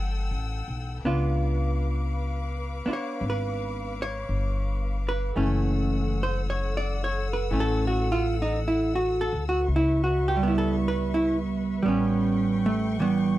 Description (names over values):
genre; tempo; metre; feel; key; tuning
jazz ballad; 55 BPM; 4/4; swing 68% on 8ths; unclear; A4 = 435 Hz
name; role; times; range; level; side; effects
vintage hollow-body jazz guitar; accompaniment; 0.0-13.4 s; E3 to D5; -26 LUFS; right 2 dB; none
warm studio string section; sustained chords; 0.0-13.4 s; A4 to E6; -36 LUFS; left 4 dB; none
upright bass; bass; 0.0-13.4 s; F#1 to D2; -28 LUFS; left 1 dB; none
room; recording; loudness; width
little or no reverb; dry, close 1970s-style studio recording; -24 LUFS; side -15 dB against mid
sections
0.0-13.4 A section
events
none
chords
0.0 Em11; 1.1 C#7b9; 5.4 F#m7; 9.7 C#m7b5; 11.9 A9